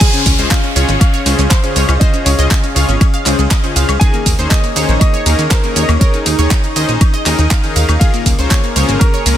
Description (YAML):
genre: progressive house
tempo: 120 BPM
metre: 4/4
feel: straight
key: unclear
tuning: A4 = 440 Hz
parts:
  - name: warm concert grand piano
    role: melody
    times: 0.0-9.4 s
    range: Bb4 to Ab5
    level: -24 LUFS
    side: equal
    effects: vintage 12-bit sampler grit, dub echo
  - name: lush unison pad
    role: sustained chords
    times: 0.6-9.4 s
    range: Db4 to F5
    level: -22 LUFS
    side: equal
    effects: chorus, phaser, sidechain pumping
  - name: analog pluck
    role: arpeggios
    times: 0.0-9.3 s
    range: Bb3 to F5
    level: -21 LUFS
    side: left 1 dB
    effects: chorus, sidechain pumping, tape echo
  - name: soft supersaw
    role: stabs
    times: 0.0-9.4 s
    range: Db3 to Eb5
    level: -20 LUFS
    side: left 3 dB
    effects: sidechain pumping, tape echo
  - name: deep house drum kit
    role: drums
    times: 0.0-9.4 s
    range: crash cymbal, handclaps, hi-hat, ride cymbal, shaker, woodblock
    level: -18 LUFS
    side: right 1 dB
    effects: sidechain pumping on hats, sidechain pumping on cymbals, sidechain pumping on perc
  - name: electronic kick drum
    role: drums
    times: 0.0-9.1 s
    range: none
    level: -12 LUFS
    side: equal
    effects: none
  - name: downlifter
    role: sound effects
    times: 0.0-4.0 s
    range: none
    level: -21 LUFS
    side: equal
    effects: none
  - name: plucky analog bass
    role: bass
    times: 0.3-9.3 s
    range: Ab1 to Eb2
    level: -14 LUFS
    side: equal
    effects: sidechain pumping
room: little or no reverb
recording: none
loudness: -10 LUFS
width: side -11 dB against mid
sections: 0.0-9.4 A section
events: drop 0.0-9.4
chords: 0.0 Dbmaj7; 4.0 Eb7sus4; 8.0 Bbm7